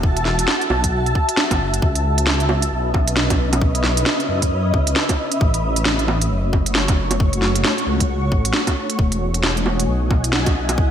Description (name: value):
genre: future garage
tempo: 134 BPM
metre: 4/4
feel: swing 60% on 16ths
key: C# minor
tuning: A4 = 440 Hz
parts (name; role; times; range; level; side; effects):
- granular cloud pad; sustained chords; 0.0-10.9 s; A3 to A5; -22 LUFS; equal; built-in reverb, ensemble chorus, sidechain pumping
- dark detuned saw bass; bass; 0.0-10.9 s; E1 to F#2; -21 LUFS; equal; sidechain pumping
- electronic kick drum; drums; 0.0-10.9 s; none; -18 LUFS; equal; small room ambience
- organic electronic drum kit; drums; 0.2-10.8 s; bongos, hi-hat, snare drum; -21 LUFS; right 1 dB; small room ambience, gated reverb
room: light reverb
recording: bright 1980s-style digital production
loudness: -16 LUFS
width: side -9 dB against mid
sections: 0.0-10.9 A section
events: none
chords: 0.0 F#m7; 1.8 C#m9; 5.4 A6; 9.0 Emaj9